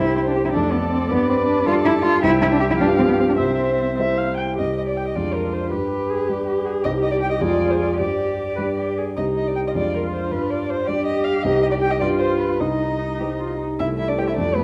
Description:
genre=quick classical-period movement for piano quartet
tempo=105 BPM (dotted quarters)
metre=6/8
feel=rubato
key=C major, C minor from 4.6 s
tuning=A4 = 440 Hz
part: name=muted violin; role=melody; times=0.0-14.6 s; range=G4 to G5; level=-27 LUFS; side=equal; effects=none
part: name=muted cello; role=second line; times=0.0-14.6 s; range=B3 to Ab4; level=-26 LUFS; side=equal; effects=none
part: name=dark baby grand piano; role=accompaniment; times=0.0-14.6 s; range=C2 to D5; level=-25 LUFS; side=equal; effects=none
part: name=muted viola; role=accompaniment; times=0.0-14.6 s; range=A3 to G5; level=-30 LUFS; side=equal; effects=none
room=wet recital hall reverb, RT60 1.4 s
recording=dark, warm production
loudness=-21 LUFS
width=mono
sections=0.0-4.6 A section; 4.6-13.8 A section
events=none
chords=0.0 C; 0.5 Dm/F; 1.1 G; 2.2 C; 2.8 G7; 3.4 C; 4.6 C5; 5.2 Ddim/F; 5.7 G; 6.8 Cm; 7.4 Ddim/F; 8.0 Gsus4; 8.6 G; 9.2 Cm; 9.7 Ddim/F; 10.3 G5; 11.4 Cm; 12.0 G7; 12.6 Cm; 13.8 C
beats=0.54 | 1.10 1.66 | 2.23 2.80 | 3.39 3.99 | 4.59 5.16 | 5.72 6.29 | 6.85 7.41 | 7.99 8.58 | 9.17 9.74 | 10.31 10.88 | 11.44 12.01 | 12.60 13.20 | 13.79 14.37

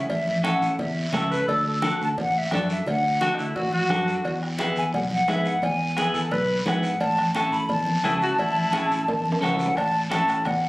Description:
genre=latin, cumbia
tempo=174 BPM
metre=4/4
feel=straight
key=A major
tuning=A4 = 440 Hz
part: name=concert flute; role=melody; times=0.0-10.7 s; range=D5 to B5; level=-24 LUFS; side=equal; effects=none
part: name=fingered electric bass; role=bass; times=0.0-10.7 s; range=A1 to G#2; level=-28 LUFS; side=equal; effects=none
part: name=bombo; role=percussion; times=0.1-10.6 s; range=none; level=-34 LUFS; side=equal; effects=none
part: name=congas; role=percussion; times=0.1-10.6 s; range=none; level=-31 LUFS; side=equal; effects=none
part: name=cowbell and timbales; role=percussion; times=0.1-10.6 s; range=none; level=-33 LUFS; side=right 1 dB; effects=none
part: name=guiro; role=percussion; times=0.1-10.7 s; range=none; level=-37 LUFS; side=right 1 dB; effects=none
part: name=clean electric guitar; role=accompaniment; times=0.4-10.4 s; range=B3 to A4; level=-28 LUFS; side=equal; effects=none
part: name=breathy tenor saxophone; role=second line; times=1.1-9.0 s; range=D#4 to B4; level=-25 LUFS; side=equal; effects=none
room=moderate studio reverb, RT60 0.6 s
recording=recorded on a phone in the room, club reverb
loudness=-21 LUFS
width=side -20 dB against mid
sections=0.0-9.8 A section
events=drum fill 9.1-9.8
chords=0.0 A; 1.5 D; 4.2 E; 7.0 A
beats=| 0.10 0.44 0.79 1.14 | 1.48 1.83 2.17 2.52 | 2.86 3.21 3.56 3.90 | 4.25 4.59 4.94 5.28 | 5.63 5.97 6.32 6.66 | 7.01 7.35 7.70 8.04 | 8.39 8.73 9.08 9.42 | 9.77 10.11 10.46

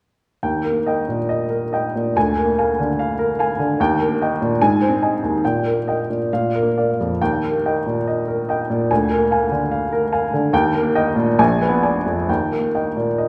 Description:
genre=classical, romantic character piece for solo piano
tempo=65-76 BPM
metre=2/4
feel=rubato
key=Eb major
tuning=A4 = 440 Hz
part: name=warm upright piano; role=solo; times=0.4-13.3 s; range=Bb1 to Ab5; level=-19 LUFS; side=equal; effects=none
room=wet recital hall reverb, RT60 1.5 s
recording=heard from further back in the room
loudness=-19 LUFS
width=mono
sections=0.4-13.3 A section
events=none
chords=0.4 Eb; 2.2 Bb7/D; 3.8 Eb; 4.6 Ab; 5.4 Eb/Bb; 6.3 Bb; 7.2 Eb; 8.9 Bb7/D; 10.5 Eb; 11.4 Bb7b9; 12.3 Eb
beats=| 0.42 1.29 | 2.15 2.99 | 3.79 4.59 | 5.42 6.29 | 7.20 8.06 | 8.90 9.71 | 10.52 11.38 | 12.28 13.19

